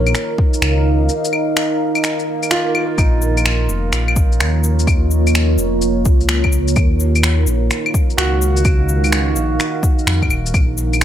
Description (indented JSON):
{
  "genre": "future garage",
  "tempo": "127 BPM",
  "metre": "4/4",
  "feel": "swing 66% on 16ths",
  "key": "Bb minor",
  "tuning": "A4 = 440 Hz",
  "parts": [
    { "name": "deep dark ambient pad", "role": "sustained chords", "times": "0.0-11.0 s", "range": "Bb3 to Gb5", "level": "-20 LUFS", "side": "right 2 dB", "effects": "chorus, built-in reverb, sidechain pumping" },
    { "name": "dark detuned saw bass", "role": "bass", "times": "0.0-11.0 s", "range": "Eb1 to F2", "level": "-16 LUFS", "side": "equal", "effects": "tube saturation, sidechain pumping" },
    { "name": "electronic shaker, claves, finger snaps and cabasa", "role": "drums", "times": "0.1-11.0 s", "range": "none", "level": "-20 LUFS", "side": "left 2 dB", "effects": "overdrive" },
    { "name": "electronic kick drum", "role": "drums", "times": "0.4-10.7 s", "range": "none", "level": "-15 LUFS", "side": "equal", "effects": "overdrive" },
    { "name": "swell", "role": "sound effects", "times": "2.2-3.0 s", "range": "none", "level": "-28 LUFS", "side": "right 1 dB", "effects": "none" },
    { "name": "clear upright piano", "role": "accompaniment", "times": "2.5-10.6 s", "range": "Eb4 to Gb4", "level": "-25 LUFS", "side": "right 3 dB", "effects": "sidechain pumping, tape echo" }
  ],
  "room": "light reverb, digital ambience",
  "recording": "none",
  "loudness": "-14 LUFS",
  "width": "side -11 dB against mid",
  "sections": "0.0-3.0 A section; 3.0-11.0 A section",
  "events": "break 1.1-3.0; swell 2.2-3.0",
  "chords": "0.0 Ebsus2; 3.0 Bbm; 6.8 Ebm9; 10.5 Bb5"
}